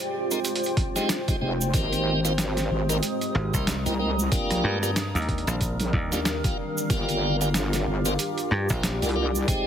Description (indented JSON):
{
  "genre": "glitch hop",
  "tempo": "93 BPM",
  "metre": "4/4",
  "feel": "swing 58% on 16ths",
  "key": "G phrygian",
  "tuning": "A4 = 443 Hz",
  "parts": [
    { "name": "dark analog pad", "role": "sustained chords", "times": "0.0-9.7 s", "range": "G3 to C5", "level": "-34 LUFS", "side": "right 1 dB", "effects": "chorus, phaser, sidechain pumping" },
    { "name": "granular cloud pad", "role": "texture", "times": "0.0-9.7 s", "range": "Eb3 to Eb6", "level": "-31 LUFS", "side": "left 1 dB", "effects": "built-in reverb, sidechain pumping" },
    { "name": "tonewheel organ", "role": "stabs", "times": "0.3-9.7 s", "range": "Ab3 to C5", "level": "-30 LUFS", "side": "equal", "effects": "overdrive, slow rotary speaker, sidechain pumping, dub echo" },
    { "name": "boom bap sampler-style drum kit", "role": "drums", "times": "0.3-9.6 s", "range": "hi-hat, rim click, snare drum", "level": "-30 LUFS", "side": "right 1 dB", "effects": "overdrive" },
    { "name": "tube shaker", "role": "percussion", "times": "0.3-9.6 s", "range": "none", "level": "-35 LUFS", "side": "right 4 dB", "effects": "none" },
    { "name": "electronic kick drum", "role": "drums", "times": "0.8-9.6 s", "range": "none", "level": "-26 LUFS", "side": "equal", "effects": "overdrive" },
    { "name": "wobble bass", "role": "bass", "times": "1.4-9.5 s", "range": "F1 to C2", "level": "-26 LUFS", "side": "equal", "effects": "chorus, tube saturation" },
    { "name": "dry thumbed slap bass", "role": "bass", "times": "3.4-9.0 s", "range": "Ab1 to G2", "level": "-27 LUFS", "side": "equal", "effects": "none" }
  ],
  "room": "light reverb",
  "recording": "heavily compressed radio sound",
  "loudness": "-23 LUFS",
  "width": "side -9 dB against mid",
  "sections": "0.0-9.7 A section",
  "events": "none",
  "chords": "0.0 Fm7; 1.7 Abmaj7; 4.3 Ebmaj7; 6.9 Gm7",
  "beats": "0.45 1.09 | 1.74 2.38 3.03 3.67 | 4.32 4.96 5.61 6.25 | 6.90 7.54 8.19 8.84 | 9.48"
}